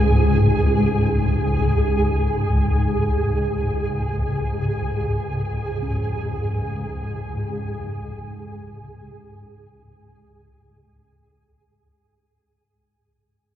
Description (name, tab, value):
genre	ambient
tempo	free time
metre	none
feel	none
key	unclear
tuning	A4 = 436 Hz
part	swarming drone	drone	0.0-12.7 s	C#2 to G#2	-20 LUFS	equal	built-in reverb, wide subtle chorus
part	flickering grainy texture	texture	0.0-12.6 s	G#4	-26 LUFS	right 2 dB	built-in reverb, wide subtle chorus
part	gamelan-type bossed gongs	arpeggios	5.8-12.6 s	E#2 to C#4	-37 LUFS	left 1 dB	analog delay
room	wet huge ambient reverb, RT60 8.7 s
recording	dreamy mix soaked in reverb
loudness	-19 LUFS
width	side -11 dB against mid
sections	0.0-12.6 A section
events	fade-out on kettle gongs 0.0-12.6; fade-out 0.7-12.6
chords	0.0 C#